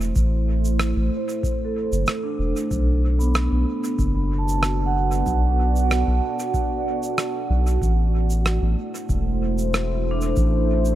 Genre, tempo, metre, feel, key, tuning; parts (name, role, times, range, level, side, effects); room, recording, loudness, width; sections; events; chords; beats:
ambient dub; 94 BPM; 4/4; straight; A dorian; A4 = 441 Hz
deep dark ambient pad; sustained chords; 0.0-11.0 s; A3 to D5; -27 LUFS; right 2 dB; chorus, built-in reverb
soft dub sub bass; bass; 0.0-11.0 s; E1 to B1; -21 LUFS; equal
shaker and rim click; drums; 0.0-11.0 s; -28 LUFS; right 1 dB; dub echo
electronic kick drum; drums; 0.2-10.5 s; -26 LUFS; equal
vibraphone with hard mallets; arpeggios; 1.2-11.0 s; B3 to A5; -27 LUFS; right 2 dB; low-pass filter, tape echo
light reverb, small room ambience; echo-heavy mix; -19 LUFS; side -13 dB against mid
0.0-11.0 A section
filter sweep on vibraphone 0.0-11.0
0.0 Am; 2.7 Bm7; 7.8 Am6
| 0.16 0.80 1.44 2.08 | 2.71 3.35 3.99 4.63 | 5.27 5.91 6.54 7.18 | 7.82 8.46 9.10 9.73 | 10.37